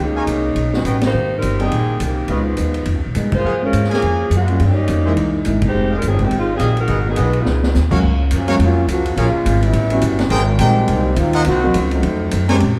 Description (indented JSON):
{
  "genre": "jazz, big band swing",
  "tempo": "209 BPM",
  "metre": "4/4",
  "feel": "swing 59% on 8ths",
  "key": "unclear",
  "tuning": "A4 = 436 Hz",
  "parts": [
    { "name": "mellow saxophone section", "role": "melody", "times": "0.0-7.7 s", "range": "Db3 to C5", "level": "-23 LUFS", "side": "equal", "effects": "none" },
    { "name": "upright bass", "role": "bass", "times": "0.0-12.8 s", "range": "F1 to Bb2", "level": "-20 LUFS", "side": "equal", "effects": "none" },
    { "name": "clear trumpet section", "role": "stabs", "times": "0.2-12.6 s", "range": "Gb4 to Ab5", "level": "-27 LUFS", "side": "equal", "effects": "none" },
    { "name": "vintage drum kit", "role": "drums", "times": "0.3-12.7 s", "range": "crash cymbal, hi-hat, kick drum, ride cymbal, snare drum", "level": "-28 LUFS", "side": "equal", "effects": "none" },
    { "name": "dark concert grand piano", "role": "accompaniment", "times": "0.7-12.6 s", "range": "Gb2 to Ab4", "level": "-24 LUFS", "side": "equal", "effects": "none" },
    { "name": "clear trombone section", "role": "second line", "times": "8.3-12.5 s", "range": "Db3 to Gb4", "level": "-22 LUFS", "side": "equal", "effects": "none" }
  ],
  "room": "wet large studio reverb, RT60 1.4 s",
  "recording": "heard from further back in the room",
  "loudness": "-17 LUFS",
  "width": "mono",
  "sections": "0.0-8.0 A section; 8.0-12.8 B section",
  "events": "band accent 1.0, 3.3, 5.6; drum fill 7.5; trombone section solo 8.0-12.8",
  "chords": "0.0 Bbm7; 0.6 Eb7alt; 1.1 Abmaj9; 2.3 Db9; 3.4 Gbmaj9; 4.6 Gm7b5; 5.2 C7alt; 5.7 Fm9; 6.9 Abm7; 7.5 Db13; 8.0 Gbmaj7; 9.2 Bbm7; 9.7 A13; 10.3 Abmaj9; 11.5 Cm7b5; 12.0 F7b9",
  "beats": "| 0.00 0.28 0.57 0.86 | 1.15 1.44 1.72 2.01 | 2.30 2.59 2.87 3.16 | 3.45 3.73 4.02 4.31 | 4.60 4.88 5.17 5.46 | 5.74 6.03 6.32 6.60 | 6.89 7.17 7.46 7.75 | 8.03 8.32 8.60 8.89 | 9.18 9.46 9.75 10.03 | 10.32 10.61 10.89 11.18 | 11.47 11.75 12.04 12.33 | 12.61"
}